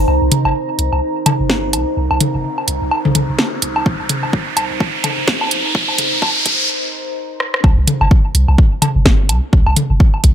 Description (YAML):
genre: minimal techno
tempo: 127 BPM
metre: 4/4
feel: swing 58% on 16ths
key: C minor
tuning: A4 = 440 Hz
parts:
  - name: punchy sub bass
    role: bass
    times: 0.0-10.3 s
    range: G1 to C2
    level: -17 LUFS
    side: equal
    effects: sidechain pumping
  - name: deep dark ambient pad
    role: texture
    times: 0.0-6.7 s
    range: Eb4 to Bb5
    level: -22 LUFS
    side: right 1 dB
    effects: chorus, built-in reverb, sidechain pumping
  - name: electronic woodblock and toms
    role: percussion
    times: 0.1-10.2 s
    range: none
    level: -18 LUFS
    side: left 1 dB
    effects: tape echo
  - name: riser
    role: sound effects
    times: 2.5-6.7 s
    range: none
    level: -19 LUFS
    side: right 1 dB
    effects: none
  - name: house drum kit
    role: drums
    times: 0.3-10.3 s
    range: hi-hat, rim click, snare drum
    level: -17 LUFS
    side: right 1 dB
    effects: none
  - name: electronic kick drum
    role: drums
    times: 3.9-10.3 s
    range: none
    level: -12 LUFS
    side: equal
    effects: none
room: little or no reverb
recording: high-pass filter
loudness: -13 LUFS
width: side -10 dB against mid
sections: 0.1-7.6 A section; 7.6-10.3 B section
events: build-up 0.1-7.6; filter sweep 0.1-7.6; riser 2.5-6.7; stop 6.7-7.6; drum fill 7.4; drop 7.6-10.3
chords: 0.1 Cm7